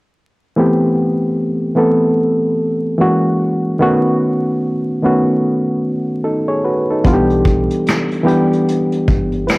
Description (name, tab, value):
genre	lo-fi hip hop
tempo	74 BPM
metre	4/4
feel	swing 60% on 16ths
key	unclear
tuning	A4 = 440 Hz
part	reed electric piano	accompaniment	0.6-9.6 s	D#3 to Db5	-13 LUFS	equal	cassette tape, low-pass filter
part	upright bass	bass	7.0-9.5 s	G1 to B1	-21 LUFS	equal	none
part	vintage brush drum kit	drums	7.0-9.6 s	finger snaps, hi-hat, kick drum, snare drum	-16 LUFS	equal	cassette tape
room	moderate spring reverb, RT60 2.5 s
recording	home recording on cassette, vinyl crackle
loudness	-13 LUFS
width	side -24 dB against mid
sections	0.6-9.6 A section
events	none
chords	0.6 Am7; 3.0 F#7; 3.8 B7; 7.0 Em7/B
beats	| 0.56 1.37 2.18 2.99 | 3.80 4.62 5.42 6.24 | 7.05 7.86 8.67 9.48